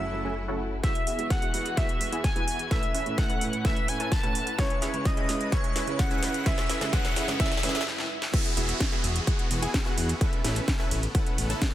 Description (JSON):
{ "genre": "EDM, festival progressive house", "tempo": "128 BPM", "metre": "4/4", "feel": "straight", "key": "E major", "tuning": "A4 = 439 Hz", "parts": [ { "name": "airy dreamy lead", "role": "melody", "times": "0.0-7.8 s", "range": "C#5 to A5", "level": "-33 LUFS", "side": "equal", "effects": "chorus, digital delay" }, { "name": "rich studio string section", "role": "sustained chords", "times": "0.0-11.7 s", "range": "C#2 to B4", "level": "-40 LUFS", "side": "left 2 dB", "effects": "vintage 12-bit sampler grit, sidechain pumping" }, { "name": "supersaw stab", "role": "riff", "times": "0.0-11.6 s", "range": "B3 to A5", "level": "-34 LUFS", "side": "equal", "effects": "sidechain pumping, low-pass filter, digital delay" }, { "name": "fat analog bass", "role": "bass", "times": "0.0-0.8, 8.6-11.5 s", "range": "E1 to E2", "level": "-30 LUFS", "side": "equal", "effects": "sidechain pumping" }, { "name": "felt-muted upright piano", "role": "accompaniment", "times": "0.1-7.7 s", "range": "A2 to B4", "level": "-36 LUFS", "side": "right 3 dB", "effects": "sidechain pumping" }, { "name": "electronic kick drum", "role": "drums", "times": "0.8-11.7 s", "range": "none", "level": "-27 LUFS", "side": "equal", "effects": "overdrive" }, { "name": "house drum kit", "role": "drums", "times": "0.8-11.7 s", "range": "crash cymbal, hi-hat, ride cymbal, snare drum", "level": "-33 LUFS", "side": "equal", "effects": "high-pass filter on cymbals, low-pass filter on cymbals, high-pass filter on snare, low-pass filter on snare, high-pass filter on hats, low-pass filter on hats, high-pass filter on room, low-pass filter on room" }, { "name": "riser, swell and downlifter", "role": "sound effects", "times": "4.4-11.7 s", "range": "none", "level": "-36 LUFS", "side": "right 1 dB", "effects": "none" } ], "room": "digital ambience", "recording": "none", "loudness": "-24 LUFS", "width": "side -13 dB against mid", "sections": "0.8-8.3 A section; 8.3-11.7 B section", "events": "build-up 0.8-8.3; drum fill 0.8-7.9, 7.9-8.3; filter sweep on supersaw synth 0.8-8.3; riser 4.4-7.9; swell 7.4-8.3; stop 7.9-8.3; drop 8.3-11.7", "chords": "0.0 F#m7; 0.8 Eadd9; 2.7 Aadd9; 4.6 C#m7; 6.5 F#m7; 8.3 Eadd9; 10.2 Aadd9" }